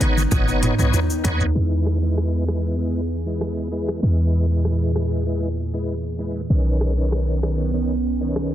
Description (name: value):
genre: dancehall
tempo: 97 BPM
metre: 4/4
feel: straight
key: unclear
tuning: A4 = 440 Hz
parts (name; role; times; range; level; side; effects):
- bright tonewheel organ; accompaniment; 0.0-8.5 s; D#3 to C#5; -27 LUFS; equal; chorus vibrato, slow rotary speaker
- glassy FM pad; sustained chords; 0.0-8.5 s; A#2 to G#4; -27 LUFS; right 1 dB; ensemble chorus, built-in reverb, sidechain pumping
- hard-hitting 808-style bass; bass; 0.0-8.5 s; F#1 to E2; -21 LUFS; equal; none
- afro-pop drum kit; drums; 0.0-8.5 s; hi-hat, kick drum, rim click, shaker, toms; -24 LUFS; right 1 dB; soft clipping on snare
- bongos; percussion; 0.0-1.4 s; none; -36 LUFS; right 4 dB; none
room: light reverb, digital ambience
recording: dense, heavily limited modern master, low-pass filter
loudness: -19 LUFS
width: side -12 dB against mid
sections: 0.0-1.6 A section; 1.6-8.5 B section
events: drum fill 0.0-1.6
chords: 0.0 Badd9; 1.6 E; 6.5 Badd9